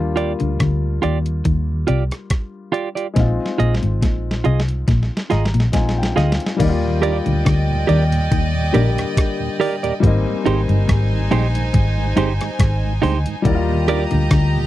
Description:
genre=lovers rock reggae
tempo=70 BPM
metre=4/4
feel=swing 54% on 16ths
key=Eb major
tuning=A4 = 440 Hz
part: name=warm grand piano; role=accompaniment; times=0.0-14.7 s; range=D3 to Bb5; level=-25 LUFS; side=left 5 dB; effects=tape echo
part: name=vintage muted fingered electric bass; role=bass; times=0.0-14.7 s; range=G1 to Eb2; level=-19 LUFS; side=equal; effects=none
part: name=clean electric guitar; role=stabs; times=0.2-14.0 s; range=Eb4 to Eb5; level=-20 LUFS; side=right 6 dB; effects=none
part: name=detuned 8-bit digital drum machine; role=drums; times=0.2-14.5 s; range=crash cymbal, hi-hat, kick drum, rim click, snare drum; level=-20 LUFS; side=equal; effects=none
part: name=clean electric guitar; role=riff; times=0.4-14.6 s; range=G2 to Eb3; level=-21 LUFS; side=left 3 dB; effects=none
part: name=rich studio violin section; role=second line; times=6.6-14.7 s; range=Eb4 to Bb5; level=-26 LUFS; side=right 1 dB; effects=none
part: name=mellow tonewheel organ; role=accompaniment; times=6.8-14.6 s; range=Eb2 to D4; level=-29 LUFS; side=right 7 dB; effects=overdrive, chorus vibrato, slow rotary speaker, tape echo
room=little or no reverb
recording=dry, close 1970s-style studio recording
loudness=-16 LUFS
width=side -14 dB against mid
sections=0.0-6.6 A section; 6.6-14.7 B section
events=drum fill 3.2-6.6; grand piano fill 4.9-6.6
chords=0.0 Ebmaj9; 3.2 Bb7sus4; 6.6 Ebmaj7; 10.0 Abmaj7; 13.5 Ebmaj7

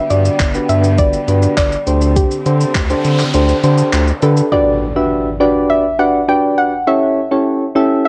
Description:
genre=dance-pop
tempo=102 BPM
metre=4/4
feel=straight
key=G major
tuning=A4 = 436 Hz
part: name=soft round pluck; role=melody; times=0.0-8.1 s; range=G4 to G5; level=-20 LUFS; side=equal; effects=chorus, cassette tape
part: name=soft electric-piano-like synth keys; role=accompaniment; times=0.0-8.1 s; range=C#4 to E5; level=-18 LUFS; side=equal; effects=chorus, sidechain pumping, cassette tape
part: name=warm symphonic string section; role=sustained chords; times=0.0-4.5 s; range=D3 to C4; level=-26 LUFS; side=equal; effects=sidechain pumping, cassette tape
part: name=round analog bass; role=bass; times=0.1-4.4 s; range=G1 to D3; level=-17 LUFS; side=equal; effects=sidechain pumping
part: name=gated 80s digital drum machine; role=drums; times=0.1-4.5 s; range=handclaps, hi-hat, kick drum, shaker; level=-21 LUFS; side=equal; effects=gated reverb, cassette tape
part: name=noise sweep and impact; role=sound effects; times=2.7-6.9 s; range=none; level=-28 LUFS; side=equal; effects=none
room=moderate small room reverb, RT60 0.5 s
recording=home recording on cassette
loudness=-14 LUFS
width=mono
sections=0.0-4.5 A section; 4.5-8.1 B section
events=noise sweep 2.7-4.5; kick muted 3.3-4.5; impact 4.5-6.9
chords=0.0 Gmaj7; 1.9 D7sus4; 4.5 Gmaj7; 6.9 A7

